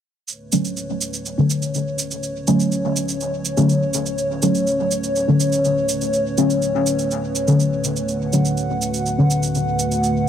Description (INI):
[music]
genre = dub techno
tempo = 123 BPM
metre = 4/4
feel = straight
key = B minor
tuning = A4 = 440 Hz
[part]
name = dark analog pad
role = sustained chords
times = 0.3-10.3 s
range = D3 to F#5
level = -22 LUFS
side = equal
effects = chorus
[part]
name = shaker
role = drums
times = 0.3-10.1 s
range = none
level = -26 LUFS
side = right 5 dB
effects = none
[part]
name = deep mellow chord stab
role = stabs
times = 0.5-10.3 s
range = D3 to C#4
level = -20 LUFS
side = left 1 dB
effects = chorus, phaser, dub echo
[sound]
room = moderate huge ambient reverb, RT60 7.1 s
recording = none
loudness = -18 LUFS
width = side -9 dB against mid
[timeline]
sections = 0.3-10.3 A section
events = filter sweep on analog synth pad 0.3-10.3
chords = 0.3 Bm9